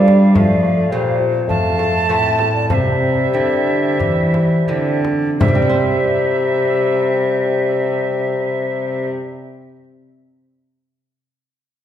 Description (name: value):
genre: classical, renaissance-style consort dance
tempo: 82-108 BPM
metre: 4/4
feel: straight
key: C mixolydian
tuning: A4 = 440 Hz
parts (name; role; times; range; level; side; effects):
- mellow hollow alto recorder; melody; 0.0-9.1 s; C5 to F5; -21 LUFS; left 6 dB; none
- alto recorder; second line; 0.0-9.1 s; E5 to A5; -23 LUFS; right 4 dB; none
- lute; accompaniment; 0.0-9.8 s; F2 to C5; -22 LUFS; right 3 dB; none
- mellow bassoon; accompaniment; 0.0-9.1 s; F3 to A3; -22 LUFS; left 1 dB; none
- warm cello; bass; 0.0-9.1 s; F2 to G3; -19 LUFS; right 1 dB; none
- frame drum; percussion; 0.1-5.7 s; none; -22 LUFS; left 1 dB; none
room: wet recital hall reverb, RT60 1.6 s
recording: heard from further back in the room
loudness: -14 LUFS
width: side -10 dB against mid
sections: 0.0-5.4 A section; 5.4-8.3 B section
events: slowing down 0.0-5.4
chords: 0.4 F; 2.7 C